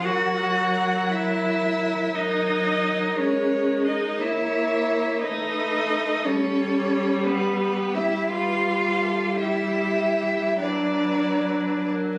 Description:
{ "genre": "classical, slow romantic movement for string quartet", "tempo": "46-60 BPM (dotted quarters)", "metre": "6/8", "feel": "rubato", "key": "B minor from 4.2 s", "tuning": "A4 = 440 Hz", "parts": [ { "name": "warm violin", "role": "melody", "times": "0.0-12.2 s", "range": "G4 to C#5", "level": "-34 LUFS", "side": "equal", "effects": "none" }, { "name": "rich violin", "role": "second line", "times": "0.0-11.9 s", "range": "B4 to F#5", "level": "-30 LUFS", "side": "equal", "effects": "none" }, { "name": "rich viola", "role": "accompaniment", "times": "0.0-12.2 s", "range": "F#3 to A#3", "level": "-29 LUFS", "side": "equal", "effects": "none" }, { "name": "clear cello", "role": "bass", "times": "0.0-11.9 s", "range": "B3 to F#4", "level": "-27 LUFS", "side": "equal", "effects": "none" } ], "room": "moderate scoring stage reverb, RT60 1.7 s", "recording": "recorded on a phone in the room, studio reverb, vinyl crackle", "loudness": "-24 LUFS", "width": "mono", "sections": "0.0-12.2 A section", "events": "none", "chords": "0.0 F#; 4.2 A#dim; 5.2 B7/A; 6.2 Em/G; 8.3 G7; 10.6 Bm/F#" }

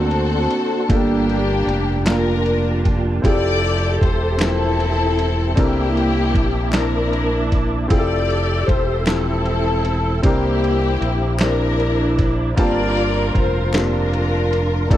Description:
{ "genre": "slow gospel", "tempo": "51 BPM (dotted quarters)", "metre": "6/8", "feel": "straight", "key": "F major", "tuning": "A4 = 442 Hz", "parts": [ { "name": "warm studio string section", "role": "melody", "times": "0.0-15.0 s", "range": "Bb3 to D5", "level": "-20 LUFS", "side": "left 2 dB", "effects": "none" }, { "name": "warm grand piano", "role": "accompaniment", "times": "0.0-15.0 s", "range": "G2 to A5", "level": "-24 LUFS", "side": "equal", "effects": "none" }, { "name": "mellow tonewheel organ", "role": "sustained chords", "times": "0.0-15.0 s", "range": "Bb3 to E6", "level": "-28 LUFS", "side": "right 3 dB", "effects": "fast rotary speaker, chorus vibrato" }, { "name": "modern bright fingered electric bass", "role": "bass", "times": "0.0-15.0 s", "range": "E1 to D2", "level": "-21 LUFS", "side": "equal", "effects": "none" }, { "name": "lo-fi sampler-style drum kit", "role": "drums", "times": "0.1-15.0 s", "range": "kick drum, ride cymbal, snare drum", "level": "-19 LUFS", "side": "equal", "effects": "none" }, { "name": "group handclap", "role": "percussion", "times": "2.1-14.1 s", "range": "none", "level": "-31 LUFS", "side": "left 4 dB", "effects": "none" } ], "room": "little or no reverb", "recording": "dry, close 1970s-style studio recording", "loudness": "-16 LUFS", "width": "side -12 dB against mid", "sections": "0.0-15.0 A section", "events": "none", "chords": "0.0 D7b13; 0.9 Gm9; 3.2 Fmaj9; 5.6 C13; 7.9 Fmaj9; 10.2 C9; 12.6 Gm11" }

